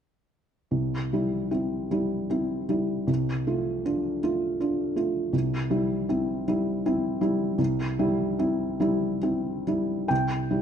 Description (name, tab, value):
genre	classical, romantic nocturne for solo piano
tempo	63-83 BPM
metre	3/4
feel	rubato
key	C major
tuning	A4 = 440 Hz
part	felt-muted upright piano	solo	0.7-10.6 s	C2 to G5	-24 LUFS	equal	none
room	moderate recital hall reverb, RT60 1.7 s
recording	close, detailed microphones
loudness	-24 LUFS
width	side -8 dB against mid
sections	0.7-10.1 A section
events	none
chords	0.7 C; 3.1 Dm7/C; 5.3 C